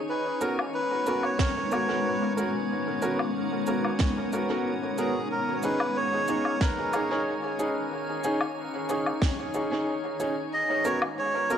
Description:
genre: ambient dub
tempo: 92 BPM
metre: 4/4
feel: straight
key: G# minor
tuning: A4 = 440 Hz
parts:
  - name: granular cloud pad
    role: sustained chords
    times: 0.0-11.6 s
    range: G#3 to A#5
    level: -32 LUFS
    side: left 1 dB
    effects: built-in reverb
  - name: drifting glass-harmonics texture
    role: texture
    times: 0.0-11.6 s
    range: C#4 to F#5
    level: -37 LUFS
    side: left 5 dB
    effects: chorus, built-in reverb
  - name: melodica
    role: melody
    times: 0.1-11.6 s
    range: G#4 to D#5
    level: -30 LUFS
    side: right 1 dB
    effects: dub echo
  - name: bright upright piano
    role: stabs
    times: 0.4-11.6 s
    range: B3 to A#4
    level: -30 LUFS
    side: right 1 dB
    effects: vintage 12-bit sampler grit, dub echo
  - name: cabasa, woodblock and snare drum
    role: drums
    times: 0.4-11.6 s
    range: none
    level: -34 LUFS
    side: equal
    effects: dub echo
  - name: electronic kick drum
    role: drums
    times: 1.4-9.4 s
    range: none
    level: -26 LUFS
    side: equal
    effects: overdrive
room: wet echo chamber reverb, RT60 2.0 s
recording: none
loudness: -25 LUFS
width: side -8 dB against mid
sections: 0.0-10.5 A section; 10.5-11.6 B section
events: none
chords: 0.1 G#m11; 5.3 D#7sus4; 10.5 G#m11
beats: | 0.09 0.74 1.39 2.04 | 2.70 3.35 4.00 4.65 | 5.31 5.96 6.61 7.26 | 7.92 8.57 9.22 9.87 | 10.52 11.18

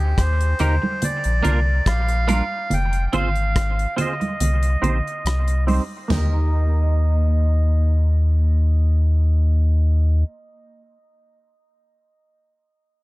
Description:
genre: dub reggae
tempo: 71 BPM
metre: 4/4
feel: straight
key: Eb major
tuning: A4 = 439 Hz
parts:
  - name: melodica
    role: melody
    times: 0.0-10.2 s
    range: G4 to G5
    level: -27 LUFS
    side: right 1 dB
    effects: low-pass filter, dub echo
  - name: warm sub bass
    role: bass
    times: 0.0-10.2 s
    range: F1 to Eb2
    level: -17 LUFS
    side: equal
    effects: none
  - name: damped 70s drum kit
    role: drums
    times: 0.2-6.3 s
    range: hi-hat, kick drum, rim click, snare drum, splash cymbal, toms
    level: -25 LUFS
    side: equal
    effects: none
  - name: semi-hollow electric guitar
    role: accompaniment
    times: 0.6-11.0 s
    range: Bb3 to C5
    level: -29 LUFS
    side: right 3 dB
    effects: ensemble chorus, low-pass filter, dub echo
  - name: congas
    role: percussion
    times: 0.6-6.5 s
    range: none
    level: -26 LUFS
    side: right 2 dB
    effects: dub echo
room: small room ambience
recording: none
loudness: -17 LUFS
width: side -21 dB against mid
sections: 0.0-6.1 A section; 6.1-9.5 B section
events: kick muted 4.4-6.1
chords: 0.0 Eb; 1.0 Bb; 2.7 Fm; 4.4 Cm; 6.1 Eb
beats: 0.17 1.02 1.86 | 2.71 3.55 4.40 5.25 | 6.09 6.94 7.78 8.63

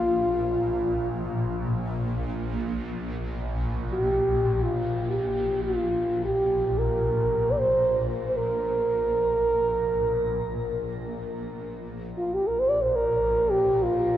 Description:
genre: world meditative, free-time meditation music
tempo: free time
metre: none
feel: none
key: unclear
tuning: A4 = 440 Hz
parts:
  - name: mellow French horn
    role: melody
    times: 0.0-14.2 s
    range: F4 to D5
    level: -24 LUFS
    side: right 1 dB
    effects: shimmer reverb
  - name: shimmering ambient pad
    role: drone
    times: 0.0-14.2 s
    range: Bb1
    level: -30 LUFS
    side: equal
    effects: chorus, built-in reverb, phaser
room: wet cathedral reverb, RT60 5.8 s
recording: worn, warbling old tape, cassette tape, warbly pitch drift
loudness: -23 LUFS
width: side -12 dB against mid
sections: 0.0-14.2 A section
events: none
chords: none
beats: free time

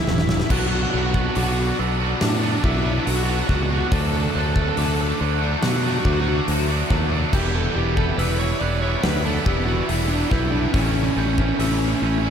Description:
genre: post-rock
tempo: 70 BPM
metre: 4/4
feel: straight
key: unclear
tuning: A4 = 440 Hz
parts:
  - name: fuzz lead guitar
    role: melody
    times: 0.0-12.3 s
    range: C#4 to D5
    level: -26 LUFS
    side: equal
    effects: distortion, tape echo
  - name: glockenspiel with soft plastic mallets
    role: arpeggios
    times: 0.0-12.3 s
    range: D6 to G6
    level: -34 LUFS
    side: right 4 dB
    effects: tape echo
  - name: twangy electric guitar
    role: arpeggios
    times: 0.0-0.5 s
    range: G3 to E4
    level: -40 LUFS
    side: left 1 dB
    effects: none
  - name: distorted electric guitar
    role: riff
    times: 0.0-12.3 s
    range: A2 to E4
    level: -26 LUFS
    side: right 9 dB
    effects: distortion
  - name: overdriven electric guitar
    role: riff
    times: 0.0-12.3 s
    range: A2 to F#4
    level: -29 LUFS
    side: left 9 dB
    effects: ensemble chorus
  - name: fingered electric bass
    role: bass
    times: 0.1-12.3 s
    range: E1 to B2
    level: -23 LUFS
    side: equal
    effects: none
  - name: huge arena drum kit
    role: drums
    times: 0.1-11.8 s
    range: crash cymbal, hi-hat, kick drum, snare drum, toms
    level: -25 LUFS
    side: equal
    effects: none
room: moderate huge ambient reverb, RT60 5.2 s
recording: dreamy mix soaked in reverb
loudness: -18 LUFS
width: side -8 dB against mid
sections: 0.5-12.3 A section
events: drum fill 0.0-0.5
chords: 0.0 A7; 0.5 Bm; 3.9 D; 7.3 Em; 10.7 A7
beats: | 0.51 1.36 2.21 3.07 | 3.92 4.77 5.62 6.48 | 7.33 8.18 9.04 9.89 | 10.74 11.59

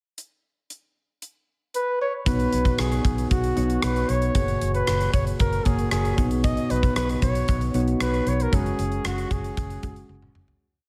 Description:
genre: 1980s-style pop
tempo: 115 BPM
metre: 4/4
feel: straight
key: B major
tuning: A4 = 440 Hz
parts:
  - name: gated 80s drum kit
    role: drums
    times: 0.2-10.6 s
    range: hi-hat, kick drum, rim click, toms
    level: -28 LUFS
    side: equal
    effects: none
  - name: warm flugelhorn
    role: melody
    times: 1.8-10.1 s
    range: F#4 to D#5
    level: -30 LUFS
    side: equal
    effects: delay
  - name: soft electric-piano-like synth keys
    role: accompaniment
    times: 2.3-10.6 s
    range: A#2 to C#5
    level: -29 LUFS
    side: equal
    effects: chorus
  - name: vintage muted fingered electric bass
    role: bass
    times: 2.3-10.5 s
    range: F#1 to B1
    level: -29 LUFS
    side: equal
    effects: none
room: moderate plate reverb, RT60 1.5 s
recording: dreamy mix soaked in reverb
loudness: -23 LUFS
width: mono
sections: 0.2-2.3 pickup bar; 2.3-10.6 verse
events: fade-out 8.5-10.6; drum fill 10.1-10.6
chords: 0.2 N.C.; 2.3 Badd9; 4.4 F#add9; 6.2 Badd9; 8.5 F#sus2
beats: | 0.18 0.70 1.22 1.74 | 2.27 2.79 3.31 3.83 | 4.35 4.87 5.40 5.92 | 6.44 6.96 7.48 8.01 | 8.53 9.05 9.57 10.09

